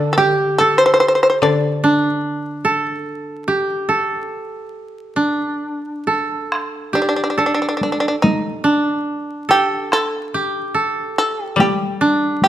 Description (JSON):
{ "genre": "japanese traditional, Japanese chamber music", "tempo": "72 BPM", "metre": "4/4", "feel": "rubato", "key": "D in sen", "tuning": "A4 = 440 Hz", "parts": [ { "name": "shamisen", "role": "melody", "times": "0.0-12.5 s", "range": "D4 to D5", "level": "-16 LUFS", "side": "equal", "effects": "none" }, { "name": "koto", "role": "second line", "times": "0.0-12.5 s", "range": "D4 to A4", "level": "-19 LUFS", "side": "right 2 dB", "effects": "none" }, { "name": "koto", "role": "accompaniment", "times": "0.0-3.9, 11.6-12.5 s", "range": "D3 to G3", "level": "-21 LUFS", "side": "left 3 dB", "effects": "none" }, { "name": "solo taiko drums", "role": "percussion", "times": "6.5-12.5 s", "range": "none", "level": "-20 LUFS", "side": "equal", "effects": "none" } ], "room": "light reverb", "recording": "close, detailed microphones, vinyl crackle", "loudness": "-16 LUFS", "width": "side -12 dB against mid", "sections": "0.0-6.5 A section; 6.5-12.5 B section", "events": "none", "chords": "none" }